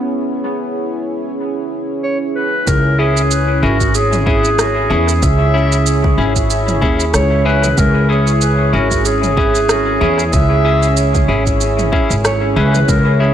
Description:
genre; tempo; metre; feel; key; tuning
ambient dub; 94 BPM; 4/4; swing 56% on 16ths; C# minor; A4 = 440 Hz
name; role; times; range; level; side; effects
warm analog pad; sustained chords; 0.0-13.3 s; C#4 to C#5; -20 LUFS; right 2 dB; chorus
concert harp; arpeggios; 0.0-2.6 s; B3; -28 LUFS; left 3 dB; dub echo
warm clarinet; melody; 2.0-13.3 s; F#4 to E5; -18 LUFS; equal; dub echo
upright bass; bass; 2.7-13.3 s; G#1 to E2; -15 LUFS; equal; none
electronic kick drum; drums; 2.7-13.0 s; none; -18 LUFS; equal; studio reverb
organic electronic drum kit; drums; 2.7-13.0 s; rim click, shaker, toms; -22 LUFS; right 2 dB; studio reverb, dub echo
clean electric guitar; stabs; 3.0-13.3 s; C#4 to G#4; -21 LUFS; left 4 dB; harmonic tremolo, dub echo
room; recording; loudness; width
light reverb, studio reverb; none; -12 LUFS; side -10 dB against mid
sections
0.0-2.7 A section; 2.7-13.3 B section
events
filter sweep on harp 0.0-2.7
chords
0.0 C#m

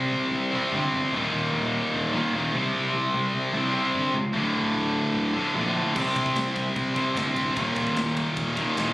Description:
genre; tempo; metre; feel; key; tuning
heavy metal; 149 BPM; 4/4; straight; unclear; A4 = 440 Hz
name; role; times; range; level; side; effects
high-gain distorted guitar; riff; 0.0-8.9 s; D2 to C4; -24 LUFS; equal; distortion
fuzz picked electric bass; bass; 0.0-8.9 s; D1 to C#2; -30 LUFS; equal; overdrive
tight metal drum kit; drums; 6.0-8.9 s; crash cymbal, kick drum, ride cymbal, snare drum; -33 LUFS; equal; none
room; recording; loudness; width
studio reverb; recorded on a phone in the room, compression; -23 LUFS; side -18 dB against mid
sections
0.0-8.9 A section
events
none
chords
0.0 C5; 1.1 Eb5; 2.5 C5; 4.3 D5; 6.0 C5; 7.6 Eb5

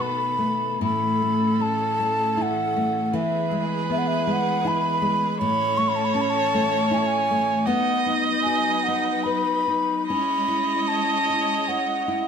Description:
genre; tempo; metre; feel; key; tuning
celtic folk, Celtic slow air; 72-81 BPM; 3/4; rubato; unclear; A4 = 440 Hz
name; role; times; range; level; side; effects
reedy baroque flute; melody; 0.0-12.3 s; E5 to C#6; -24 LUFS; left 1 dB; none
warm viola; second line; 0.0-12.3 s; A4 to D#5; -27 LUFS; right 5 dB; none
nylon-string guitar; accompaniment; 0.0-12.3 s; A2 to C#5; -26 LUFS; left 2 dB; none
bright studio string section; sustained chords; 0.0-12.3 s; D#3 to C#5; -32 LUFS; equal; none
room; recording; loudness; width
moderate stone room reverb, RT60 1.1 s; band playing live in one room; -20 LUFS; side -7 dB against mid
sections
0.8-12.3 A section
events
none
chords
0.0 B7; 0.8 A; 3.1 E; 5.4 A; 7.7 B; 10.1 C#m

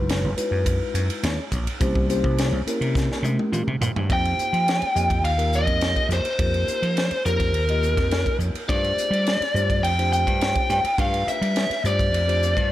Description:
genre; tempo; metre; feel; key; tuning
electric jazz fusion; 104 BPM; 4/4; straight; unclear; A4 = 440 Hz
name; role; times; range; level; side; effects
mellow tine electric piano; accompaniment; 0.0-12.7 s; Ab3 to Eb5; -29 LUFS; left 2 dB; medium stereo tremolo, wide subtle chorus
vintage slap bass; bass; 0.0-12.7 s; Gb1 to G3; -24 LUFS; equal; none
crisp fusion drum kit; drums; 0.1-12.7 s; hi-hat, kick drum, ride cymbal, snare drum, toms; -26 LUFS; equal; none
biting lead guitar; melody; 4.1-12.7 s; Bb4 to G5; -23 LUFS; equal; overdrive
room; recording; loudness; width
moderate large studio reverb, RT60 1.2 s, studio ambience; none; -20 LUFS; side -14 dB against mid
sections
0.0-4.1 A section; 4.1-12.7 B section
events
drum fill 2.9-4.1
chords
0.0 Gb13sus4; 1.8 C7b9; 4.1 F9sus4; 8.7 G9sus4

